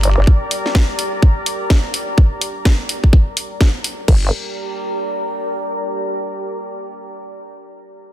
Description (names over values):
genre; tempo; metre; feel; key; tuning
bass house; 126 BPM; 4/4; swing 61% on 16ths; G minor; A4 = 437 Hz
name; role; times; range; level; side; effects
vowel-sweep wobble bass; bass; 0.0-0.3, 4.1-4.3 s; G1; -14 LUFS; equal; chorus, tube saturation, sidechain pumping
garage drum kit; drums; 0.0-4.2 s; crash cymbal, hi-hat, snare drum; -22 LUFS; equal; studio reverb
deep dark ambient pad; texture; 0.0-5.9 s; G4 to Bb5; -24 LUFS; equal; chorus, built-in reverb, sidechain pumping
electronic kick drum; drums; 0.3-4.2 s; none; -11 LUFS; equal; studio reverb
room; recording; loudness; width
digital ambience; dense, heavily limited modern master; -15 LUFS; side -12 dB against mid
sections
0.0-4.1 A section; 4.1-6.0 B section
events
fade-out on ambient pad 0.0-4.1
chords
0.0 Gm